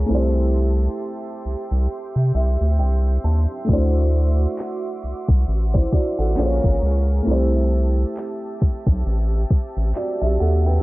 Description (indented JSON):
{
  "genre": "contemporary R&B",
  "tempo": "67 BPM",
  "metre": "4/4",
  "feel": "swing 58% on 16ths",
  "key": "A dorian",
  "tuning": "A4 = 440 Hz",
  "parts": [
    { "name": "felt-muted upright piano", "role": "accompaniment", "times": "0.0-10.8 s", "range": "A3 to A5", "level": "-24 LUFS", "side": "equal", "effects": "none" },
    { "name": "lush unison pad", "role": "sustained chords", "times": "0.0-10.8 s", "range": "F#4 to D6", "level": "-32 LUFS", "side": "right 2 dB", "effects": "chorus" },
    { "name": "round analog bass", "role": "bass", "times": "0.0-10.8 s", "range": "Ab1 to C3", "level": "-18 LUFS", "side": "equal", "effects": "transformer saturation" },
    { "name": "smooth R&B drum kit", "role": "drums", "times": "3.7-10.6 s", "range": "handclaps, hi-hat, kick drum", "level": "-19 LUFS", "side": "equal", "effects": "overdrive" }
  ],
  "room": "little or no reverb",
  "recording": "dry, gritty hardware recording, cassette tape, low-pass filter",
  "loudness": "-18 LUFS",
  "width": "side -20 dB against mid",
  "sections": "0.0-10.8 A section",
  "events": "felt piano fill 1.9-3.7",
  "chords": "0.1 Am7/C; 3.7 D9; 6.4 Bbm7; 7.3 Am7"
}